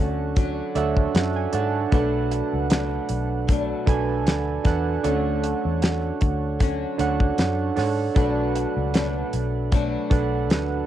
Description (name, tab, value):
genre	indie pop, bedroom pop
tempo	77 BPM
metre	4/4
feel	swing 55% on 16ths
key	B dorian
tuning	A4 = 436 Hz
part	flamenco guitar	accompaniment	0.0-10.9 s	B2 to D4	-30 LUFS	left 10 dB	wide subtle chorus, warbly pitch drift, cassette tape
part	soft electric-piano-like synth keys	accompaniment	0.0-10.9 s	D4 to A5	-25 LUFS	right 7 dB	chorus, cassette tape
part	vintage muted fingered electric bass	bass	0.0-10.8 s	B1 to G#2	-27 LUFS	left 1 dB	none
part	damped 70s drum kit	drums	0.4-10.7 s	hi-hat, kick drum, snare drum	-21 LUFS	left 1 dB	cassette tape
room	small room ambience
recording	home recording on cassette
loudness	-20 LUFS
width	side -11 dB against mid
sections	0.0-10.9 A section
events	synth keys fill 0.4-1.9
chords	0.0 Dmaj7; 1.9 Bm7; 5.0 Dmaj7; 8.2 Bm7